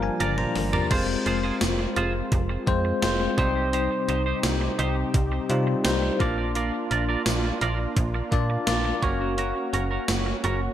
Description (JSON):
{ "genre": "1980s-style pop", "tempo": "85 BPM", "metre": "4/4", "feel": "straight", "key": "F dorian", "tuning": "A4 = 440 Hz", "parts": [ { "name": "bell-like tine electric piano", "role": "accompaniment", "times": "0.0-10.7 s", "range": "F3 to Bb5", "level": "-27 LUFS", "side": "left 2 dB", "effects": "medium stereo tremolo" }, { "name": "warm analog pad", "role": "sustained chords", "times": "0.0-10.7 s", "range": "C3 to Bb4", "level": "-33 LUFS", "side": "left 1 dB", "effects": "chorus" }, { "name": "clean electric guitar", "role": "riff", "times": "0.0-10.7 s", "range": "Db4 to D5", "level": "-31 LUFS", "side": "right 5 dB", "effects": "analog chorus, digital delay" }, { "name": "slap-like FM bass", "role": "bass", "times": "0.0-10.7 s", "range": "F1 to C3", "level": "-28 LUFS", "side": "right 1 dB", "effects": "none" }, { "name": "gated 80s digital drum machine", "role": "drums", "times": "0.2-10.6 s", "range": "crash cymbal, hi-hat, kick drum, snare drum, tambourine, toms", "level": "-27 LUFS", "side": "right 1 dB", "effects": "gated reverb, gated reverb snare, overdrive" } ], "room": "light reverb", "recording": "none", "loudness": "-22 LUFS", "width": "side -11 dB against mid", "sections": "0.9-10.7 A section", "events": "tine electric piano fill 0.0-0.9; drum fill 0.2-0.9", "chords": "0.0 Gm7; 0.9 Fm; 3.4 Cm; 6.2 Bb; 9.0 Gb", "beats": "0.20 | 0.91 1.61 2.32 3.03 | 3.73 4.44 5.14 5.85 | 6.56 7.26 7.97 8.67 | 9.38 10.09" }